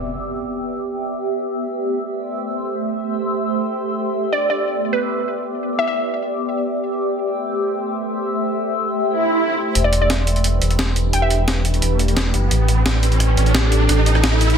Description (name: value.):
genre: liquid drum and bass.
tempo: 174 BPM.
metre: 4/4.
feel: straight.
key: E minor.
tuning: A4 = 440 Hz.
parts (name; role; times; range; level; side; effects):
shimmering ambient pad; sustained chords; 0.0-14.6 s; E3 to E5; -22 LUFS; equal; chorus, built-in reverb, phaser.
impact, swell and riser; sound effects; 0.0-0.1, 9.1-14.6 s; none; -23 LUFS; right 2 dB; none.
glassy wavetable pluck; melody; 4.3-6.1, 9.8-11.7 s; B4 to G5; -22 LUFS; equal; chorus, ping-pong delay.
sub bass with octave; bass; 9.8-14.6 s; E1 to A1; -17 LUFS; equal; none.
breakbeat sampler-style drum kit; drums; 9.8-14.6 s; hi-hat, rim click, snare drum; -22 LUFS; equal; low-pass filter on hats, small room ambience, low-pass filter on snare.
room: moderate plate reverb, RT60 1.4 s.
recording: dense, heavily limited modern master.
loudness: -17 LUFS.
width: side -7 dB against mid.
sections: 0.0-9.8 A section; 9.8-14.6 B section.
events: filter sweep on drum 0.0-9.8; filter sweep on ambient pad 0.0-9.8; swell 9.1-9.8; build-up 9.8-14.6; riser 9.8-14.6.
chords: 0.0 Em7; 1.5 Am7; 4.2 Em7; 7.0 Am7; 9.8 Em7; 12.5 Am7.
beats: | 0.10 0.45 0.79 1.13 | 1.48 1.82 2.17 2.51 | 2.86 3.20 3.55 3.89 | 4.24 4.58 4.93 5.27 | 5.62 5.96 6.31 6.65 | 7.00 7.34 7.69 8.03 | 8.38 8.72 9.06 9.41 | 9.76 10.10 10.45 10.79 | 11.13 11.48 11.82 12.17 | 12.51 12.86 13.20 13.55 | 13.89 14.24.